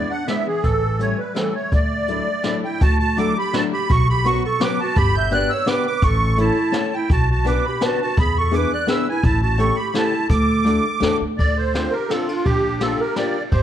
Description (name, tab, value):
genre	musette waltz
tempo	168 BPM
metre	3/4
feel	straight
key	D major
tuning	A4 = 440 Hz
part	musette accordion	melody	0.0-13.6 s	F4 to G6	-22 LUFS	right 2 dB	none
part	warm clarinet	second line	0.0-13.6 s	E3 to E5	-26 LUFS	right 4 dB	none
part	fingerpicked steel-string acoustic guitar	accompaniment	0.0-13.4 s	F#3 to C#5	-24 LUFS	left 4 dB	none
part	upright bass	bass	0.0-13.6 s	G1 to E2	-21 LUFS	equal	none
part	jazz brush drum kit	drums	0.3-13.6 s	hi-hat, kick drum, ride cymbal, snare drum	-23 LUFS	equal	none
room	light reverb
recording	dark, warm production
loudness	-17 LUFS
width	side -10 dB against mid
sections	0.0-2.8 A section; 2.8-11.4 A section; 11.4-13.6 B section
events	none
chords	0.0 E7; 0.6 A7; 1.7 Dadd9; 3.9 Bsus2; 5.0 Gmaj7; 6.0 A; 7.1 Bmadd9; 8.2 E7; 9.2 A7; 10.3 Dadd9; 11.4 Dm7; 12.5 Bb6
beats	0.28 | 0.64 1.00 1.36 | 1.72 2.08 2.44 | 2.81 3.18 3.54 | 3.90 4.26 4.62 | 4.97 5.32 5.67 | 6.03 6.38 6.74 | 7.10 7.46 7.82 | 8.18 8.53 8.88 | 9.23 9.59 9.94 | 10.30 10.65 11.02 | 11.38 11.75 12.11 | 12.46 12.82 13.17 | 13.53